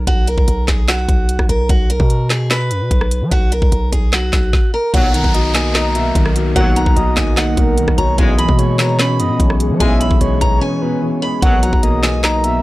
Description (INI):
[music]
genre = hip hop, trap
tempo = 148 BPM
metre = 4/4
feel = half-time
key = unclear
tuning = A4 = 440 Hz
[part]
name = picked steel-string acoustic guitar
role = melody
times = 0.0-12.6 s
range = F#4 to B5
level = -21 LUFS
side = right 1 dB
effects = low-pass filter
[part]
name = distorted 808-style bass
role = bass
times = 0.0-12.6 s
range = B1 to F#3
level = -18 LUFS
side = equal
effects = distortion
[part]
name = trap drum kit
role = drums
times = 0.1-12.5 s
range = handclaps, hi-hat, kick drum, rim click, snare drum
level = -16 LUFS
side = equal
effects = none
[part]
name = breathy flute-like synth lead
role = second line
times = 4.9-12.6 s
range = A#4 to F#5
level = -24 LUFS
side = left 1 dB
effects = chorus, analog delay
[part]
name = dark grand piano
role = accompaniment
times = 4.9-12.6 s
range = B2 to D#4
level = -20 LUFS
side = left 1 dB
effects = low-pass filter
[part]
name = glassy FM pad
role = sustained chords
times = 6.1-12.6 s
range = B2 to D#5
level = -26 LUFS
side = equal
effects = ensemble chorus, built-in reverb
[part]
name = clear brass ensemble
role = stabs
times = 4.9-11.7 s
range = D#2 to G#3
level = -22 LUFS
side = left 1 dB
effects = none
[part]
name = downlifter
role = sound effects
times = 4.9-8.2 s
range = none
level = -27 LUFS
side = equal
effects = none
[sound]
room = little or no reverb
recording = dry, gritty hardware recording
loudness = -12 LUFS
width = side -18 dB against mid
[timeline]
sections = 0.0-4.9 A section; 4.9-12.6 B section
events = break 10.6-11.4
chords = 0.0 B5; 1.7 G#m9/B (rootless); 4.9 D#m/B; 8.2 E6/B; 11.4 Bmaj7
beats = | 0.07 0.48 0.88 1.29 | 1.70 2.10 2.51 2.91 | 3.32 3.72 4.13 4.53 | 4.94 5.34 5.75 6.15 | 6.56 6.96 7.37 7.78 | 8.18 8.59 8.99 9.40 | 9.80 10.21 10.61 11.02 | 11.43 11.83 12.24